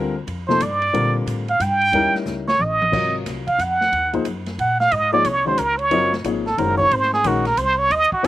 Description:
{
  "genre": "modal jazz",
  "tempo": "181 BPM",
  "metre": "3/4",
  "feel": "swing 64% on 8ths",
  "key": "Ab mixolydian",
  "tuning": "A4 = 444 Hz",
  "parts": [
    { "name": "dark baby grand piano", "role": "accompaniment", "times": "0.0-8.3 s", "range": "C3 to Eb5", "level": "-23 LUFS", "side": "left 4 dB", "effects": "none" },
    { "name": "upright bass", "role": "bass", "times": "0.0-8.3 s", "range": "Gb1 to Bb2", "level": "-27 LUFS", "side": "equal", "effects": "none" },
    { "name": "open jazz drum kit", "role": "drums", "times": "0.3-8.3 s", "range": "crash cymbal, hi-hat, kick drum, ride cymbal, snare drum, toms", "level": "-32 LUFS", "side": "equal", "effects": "none" },
    { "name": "trumpet with plunger mute", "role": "melody", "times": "0.5-8.3 s", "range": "Gb4 to G5", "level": "-18 LUFS", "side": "right 2 dB", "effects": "none" }
  ],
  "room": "little or no reverb",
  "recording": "recorded outdoors, with no room sound",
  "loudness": "-17 LUFS",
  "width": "side -15 dB against mid",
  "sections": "0.0-2.9 A section; 2.9-8.3 A section",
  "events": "muted trumpet solo 0.0-8.3; drum fill 2.3-2.9",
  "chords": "0.0 Fsus4; 1.9 Eb7b9; 2.9 Ab9; 4.9 Gbadd9; 6.9 Ab9"
}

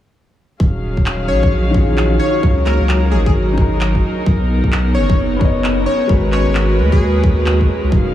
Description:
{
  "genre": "future garage",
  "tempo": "131 BPM",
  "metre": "4/4",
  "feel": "swing 63% on 16ths",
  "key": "Eb minor",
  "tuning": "A4 = 439 Hz",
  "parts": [
    { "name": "rich chamber string section", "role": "sustained chords", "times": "0.6-8.1 s", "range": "Eb3 to F5", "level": "-20 LUFS", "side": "right 1 dB", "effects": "sidechain pumping" },
    { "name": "warm sub bass", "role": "bass", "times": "0.6-8.1 s", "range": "Eb1 to Eb2", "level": "-17 LUFS", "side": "equal", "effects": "sidechain pumping" },
    { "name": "electronic kick drum", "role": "drums", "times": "0.6-8.0 s", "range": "none", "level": "-14 LUFS", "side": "equal", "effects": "none" },
    { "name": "electronic handclaps", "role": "drums", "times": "1.1-7.6 s", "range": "none", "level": "-27 LUFS", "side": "right 1 dB", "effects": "none" },
    { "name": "plucky unison lead", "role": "melody", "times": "1.3-7.2 s", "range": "Ab4 to Db5", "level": "-21 LUFS", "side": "left 2 dB", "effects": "diffuse ambient delay" },
    { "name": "felt-muted upright piano", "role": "accompaniment", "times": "1.7-6.3 s", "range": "Eb3 to D#5", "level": "-23 LUFS", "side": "left 2 dB", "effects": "sidechain pumping, analog delay" }
  ],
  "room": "moderate huge ambient reverb, RT60 8.3 s",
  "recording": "dreamy mix soaked in reverb, small room reverb",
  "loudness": "-12 LUFS",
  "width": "side -12 dB against mid",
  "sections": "0.6-8.1 A section",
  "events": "none",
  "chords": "0.6 Ebm11; 2.4 Gb6; 4.3 Bmaj9; 6.1 Abm9"
}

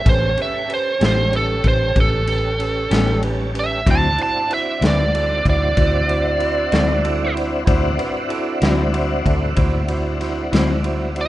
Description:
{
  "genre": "slow blues",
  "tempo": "63 BPM (dotted quarters)",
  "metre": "12/8",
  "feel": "straight",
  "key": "unclear",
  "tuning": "A4 = 441 Hz",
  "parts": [
    { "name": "biting lead guitar", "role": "melody", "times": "0.0-11.3 s", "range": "A4 to A5", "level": "-20 LUFS", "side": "right 2 dB", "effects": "overdrive" },
    { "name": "tonewheel organ", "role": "sustained chords", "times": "0.0-11.3 s", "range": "C4 to A4", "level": "-25 LUFS", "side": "left 1 dB", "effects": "chorus vibrato, slow rotary speaker" },
    { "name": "barky tine electric piano", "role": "accompaniment", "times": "0.1-11.3 s", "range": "C#4 to D5", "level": "-27 LUFS", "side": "right 4 dB", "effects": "overdrive" },
    { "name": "vintage muted fingered electric bass", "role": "bass", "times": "0.1-11.3 s", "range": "A1 to D2", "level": "-21 LUFS", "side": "equal", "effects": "none" },
    { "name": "raw garage drum kit", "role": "drums", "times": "0.1-11.3 s", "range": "kick drum, ride cymbal, snare drum", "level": "-21 LUFS", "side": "equal", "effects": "none" },
    { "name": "clean electric guitar", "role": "accompaniment", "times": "1.0-10.7 s", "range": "A2 to E4", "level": "-22 LUFS", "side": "left 6 dB", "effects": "harmonic tremolo" }
  ],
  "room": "little or no reverb",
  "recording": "rough home demo mix, nothing above 10.6 kHz",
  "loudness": "-16 LUFS",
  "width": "side -15 dB against mid",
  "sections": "0.0-11.3 A section",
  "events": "lead electric guitar solo 0.0-11.3",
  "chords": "0.0 A9; 3.9 D9"
}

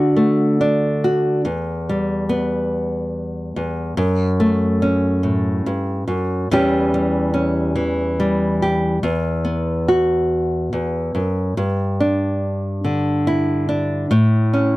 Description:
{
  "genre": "folk, solo fingerstyle acoustic guitar",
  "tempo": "47 BPM (dotted quarters)",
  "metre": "6/8",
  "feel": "straight",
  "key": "E dorian",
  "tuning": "A4 = 440 Hz",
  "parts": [
    { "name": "nylon-string guitar", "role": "solo", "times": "0.0-14.8 s", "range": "E2 to G4", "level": "-17 LUFS", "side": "equal", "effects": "none" }
  ],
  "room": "light reverb",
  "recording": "dry, close 1970s-style studio recording",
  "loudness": "-17 LUFS",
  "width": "side -18 dB against mid",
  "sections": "0.0-11.6 A section; 11.6-14.8 B section",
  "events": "none",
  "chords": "0.0 D; 1.4 Em; 4.0 F#m; 6.5 Em6; 9.0 Esus2; 11.6 G5; 14.1 A"
}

